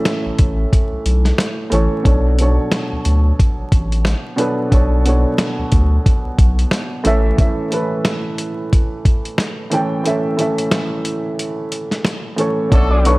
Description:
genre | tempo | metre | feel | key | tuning
hip hop, boom-bap hip-hop | 90 BPM | 4/4 | swing 60% on 16ths | unclear | A4 = 441 Hz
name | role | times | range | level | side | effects
dark upright piano | accompaniment | 0.0-13.2 s | A2 to G5 | -20 LUFS | right 1 dB | high-pass filter, low-pass filter
dusty soul sampler-style drum kit | drums | 0.1-13.2 s | hi-hat, kick drum, snare drum | -16 LUFS | equal | none
saturated sub bass | bass | 0.3-7.3, 12.7-13.2 s | A1 to D2 | -15 LUFS | equal | none
clear horn section | stabs | 12.7-13.2 s | A3 to A4 | -23 LUFS | left 1 dB | high-pass filter, low-pass filter
dark upright piano | melody | 12.9-13.2 s | C#5 to D6 | -17 LUFS | left 2 dB | high-pass filter, low-pass filter
room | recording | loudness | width
light reverb, small room reverb | vinyl crackle | -14 LUFS | side -22 dB against mid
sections
0.0-12.7 A section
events
break 7.4-12.7; kick muted 10.1-12.7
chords
0.0 A; 2.1 Bm7; 7.1 A

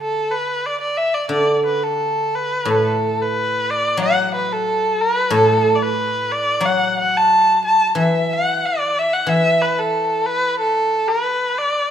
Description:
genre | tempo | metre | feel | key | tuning
chinese traditional, Chinese chamber ensemble | 91 BPM | 2/4 | rubato | D gong mode | A4 = 440 Hz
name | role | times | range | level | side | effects
rich erhu | melody | 0.0-11.9 s | A4 to A5 | -17 LUFS | equal | none
guzheng | accompaniment | 0.0-11.2 s | A2 to F#3 | -21 LUFS | equal | none
room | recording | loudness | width
moderate recital hall reverb, RT60 1.6 s | none | -16 LUFS | side -9 dB against mid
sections
0.0-2.7 A section; 2.7-11.9 B section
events
none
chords
none

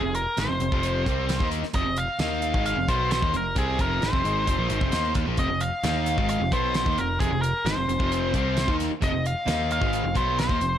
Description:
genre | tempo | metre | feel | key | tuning
classic rock | 132 BPM | 4/4 | straight | F minor | A4 = 442 Hz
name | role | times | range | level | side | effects
nasal lead guitar with a parked wah | melody | 0.0-10.8 s | Ab4 to F5 | -27 LUFS | equal | overdrive, slapback echo
biting overdriven guitar | riff | 0.0-10.8 s | F2 to Eb4 | -30 LUFS | right 9 dB | none
crunchy overdriven guitar | riff | 0.0-10.8 s | F2 to Eb4 | -31 LUFS | left 13 dB | none
picked electric bass | bass | 0.0-10.8 s | F1 to Eb2 | -29 LUFS | equal | none
damped 70s drum kit | drums | 0.1-10.7 s | hi-hat, kick drum, snare drum | -28 LUFS | equal | none
fuzz guitar | riff | 5.4-10.8 s | F2 to Eb4 | -33 LUFS | equal | distortion
room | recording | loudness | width
light reverb, small room ambience | none | -22 LUFS | side -10 dB against mid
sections
0.0-10.8 A section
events
none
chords
0.0 Fm

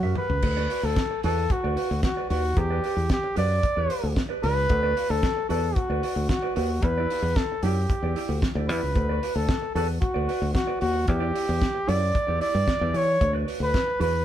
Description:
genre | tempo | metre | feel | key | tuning
disco | 113 BPM | 4/4 | straight | unclear | A4 = 441 Hz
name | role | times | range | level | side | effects
warm flugelhorn | melody | 0.0-14.2 s | F#4 to D5 | -26 LUFS | equal | none
mellow electric guitar | accompaniment | 0.0-14.2 s | E4 to F#5 | -34 LUFS | right 6 dB | none
fingered electric bass | bass | 0.0-14.2 s | C#2 to E3 | -26 LUFS | equal | none
damped 70s drum kit | drums | 0.0-14.1 s | crash cymbal, hi-hat, kick drum, snare drum, toms | -28 LUFS | equal | none
room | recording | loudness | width
moderate stone room reverb, RT60 1.1 s | band playing live in one room | -22 LUFS | side -11 dB against mid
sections
0.4-14.2 A section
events
drum fill 0.0-0.4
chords
0.4 D6; 2.6 Em7; 4.7 D6; 6.8 Em7; 9.0 D6; 11.1 Em7; 13.2 D6

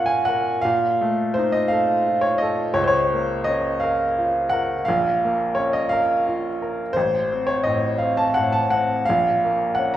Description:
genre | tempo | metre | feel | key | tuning
classical, romantic nocturne for solo piano | 57 BPM (dotted quarters) | 12/8 | rubato | Bb minor | A4 = 436 Hz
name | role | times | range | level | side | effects
clear upright piano | solo | 0.0-10.0 s | A1 to Bb5 | -18 LUFS | equal | none
room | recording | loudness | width
wet recital hall reverb, RT60 1.4 s | heard from further back in the room | -18 LUFS | side -12 dB against mid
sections
0.0-10.0 A section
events
none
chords
0.0 Bbm; 0.6 F7/Bb; 2.8 Bbm/Db; 4.9 Bbm; 7.0 Adim7; 9.1 Bbm

